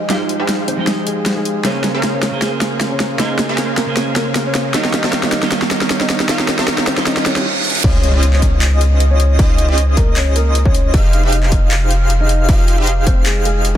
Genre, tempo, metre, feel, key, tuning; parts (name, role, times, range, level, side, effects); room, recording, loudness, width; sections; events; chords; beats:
future bass; 155 BPM; 4/4; swing 54% on 16ths, half-time; A4 = 436 Hz
dark grand piano; melody; 0.0-13.8 s; Ab3 to F5; -24 LUFS; left 2 dB; sidechain pumping, dub echo
clean electric guitar; accompaniment; 0.0-7.5 s; Db3 to G5; -22 LUFS; right 4 dB; wide subtle chorus, sidechain pumping
supersaw stab; riff; 0.0-13.8 s; Db4 to F5; -22 LUFS; right 1 dB; sidechain pumping, low-pass filter
long sustained 808-style bass; bass; 0.0-13.8 s; F1 to Eb2; -14 LUFS; equal; sidechain pumping, high-pass filter
dubstep drum kit; drums; 0.1-13.7 s; crash cymbal, handclaps, hi-hat, snare drum; -19 LUFS; equal
riser, reverse cymbal and impact; sound effects; 6.5-9.4 s; -25 LUFS; right 2 dB
airy dreamy lead; arpeggios; 7.8-13.8 s; Eb5 to F5; -23 LUFS; equal; chorus, sidechain pumping
electronic kick drum; drums; 7.8-13.8 s; -14 LUFS; equal; distortion
light reverb; dense, heavily limited modern master; -13 LUFS; side -11 dB against mid
0.0-7.8 A section; 7.8-13.8 B section
build-up 0.0-7.8; drum fill 0.0-7.5, 7.6; filter sweep on supersaw synth 0.0-7.8; reverse cymbal 7.1-7.8; drop 7.8-13.8; impact 7.8-9.4
0.0 Fm9; 1.6 Bbm9; 4.7 Eb9; 7.8 Dbmaj9; 10.9 Fm9
| 0.10 0.49 0.87 1.26 | 1.65 2.03 2.42 2.81 | 3.20 3.58 3.97 4.36 | 4.74 5.13 5.52 5.91 | 6.29 6.68 7.07 7.45 | 7.84 8.23 8.62 9.00 | 9.39 9.78 10.16 10.55 | 10.94 11.32 11.71 12.10 | 12.49 12.87 13.26 13.65